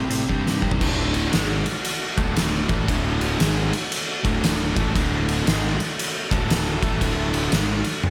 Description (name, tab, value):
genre	blues rock power trio and southern rock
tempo	116 BPM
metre	4/4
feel	swing 63% on 8ths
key	D mixolydian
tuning	A4 = 440 Hz
part	overdriven tonewheel organ	sustained chords	0.0-8.1 s	G3 to Eb5	-36 LUFS	equal	none
part	overdriven electric guitar	riff	0.0-7.8 s	D2 to C4	-28 LUFS	equal	none
part	fuzz fingered electric bass	bass	0.1-7.8 s	D1 to A2	-29 LUFS	equal	overdrive
part	oversized low-tuned drum kit	drums	0.1-8.1 s	crash cymbal, hi-hat, kick drum, ride cymbal, snare drum, toms	-25 LUFS	equal	none
room	moderate lush hall reverb, RT60 2.3 s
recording	big arena sound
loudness	-22 LUFS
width	mono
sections	0.8-8.1 A section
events	drum fill 0.3-0.8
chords	0.0 C; 0.8 D